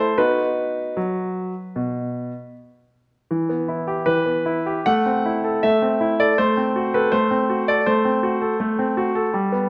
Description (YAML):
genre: classical-period piano sonatina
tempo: 79 BPM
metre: 4/4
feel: uneven beats, rubato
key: unclear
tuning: A4 = 439 Hz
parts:
  - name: bright concert grand piano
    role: solo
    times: 0.0-9.7 s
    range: B2 to F#5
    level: -21 LUFS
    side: equal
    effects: none
room: moderate recital hall reverb, RT60 1.4 s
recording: none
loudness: -21 LUFS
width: mono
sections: 0.0-9.7 A section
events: none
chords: 0.2 B; 3.3 Em; 4.9 Am; 6.4 F#dim/A